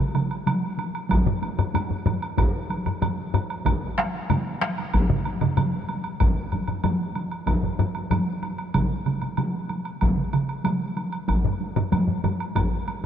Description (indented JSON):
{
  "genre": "japanese traditional, taiko drum ensemble",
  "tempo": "94 BPM",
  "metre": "4/4",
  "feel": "straight",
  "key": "none",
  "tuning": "none",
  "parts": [
    { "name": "taiko ensemble", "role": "percussion", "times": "0.1-13.0 s", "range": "none", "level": "-27 LUFS", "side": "right 1 dB", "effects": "none" },
    { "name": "woodblock", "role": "percussion", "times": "0.1-13.0 s", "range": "none", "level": "-33 LUFS", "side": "right 3 dB", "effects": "none" },
    { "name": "taiko ensemble", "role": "percussion", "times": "0.2-10.8 s", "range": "none", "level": "-28 LUFS", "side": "right 4 dB", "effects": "none" },
    { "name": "taiko ensemble", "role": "percussion", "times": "1.1-12.7 s", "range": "none", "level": "-26 LUFS", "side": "equal", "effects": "none" },
    { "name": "taiko ensemble", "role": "percussion", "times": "1.3-12.7 s", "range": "none", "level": "-26 LUFS", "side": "left 2 dB", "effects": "none" }
  ],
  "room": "moderate huge ambient reverb, RT60 3.7 s",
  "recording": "dark, warm production",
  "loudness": "-22 LUFS",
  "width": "side -9 dB against mid",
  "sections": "0.0-13.1 A section",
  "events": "none",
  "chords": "none"
}